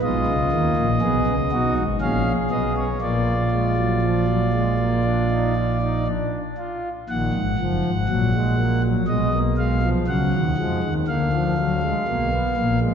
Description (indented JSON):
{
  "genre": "classical, baroque-style 4-part fugue for pipe organ",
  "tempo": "60 BPM",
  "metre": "4/4",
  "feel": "straight",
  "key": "Eb minor",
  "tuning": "A4 = 439 Hz",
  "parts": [
    { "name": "pipe organ, principal", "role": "solo", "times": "0.0-12.9 s", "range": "Gb1 to Gb5", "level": "-19 LUFS", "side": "equal", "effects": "none" }
  ],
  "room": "wet church reverb, RT60 2.9 s",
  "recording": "heard from further back in the room, nothing above 8.0 kHz",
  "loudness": "-19 LUFS",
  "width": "side -7 dB against mid",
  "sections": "0.0-7.1 A section; 7.1-12.9 B section",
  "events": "none",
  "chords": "0.0 Fm7b5; 3.0 Bb; 7.1 Ebm; 9.1 Abm/Cb; 11.1 Bb7/D",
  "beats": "0.03 1.03 2.02 | 3.02 4.04 5.05 6.07 | 7.09 8.09 9.10 10.09 | 11.08 12.08"
}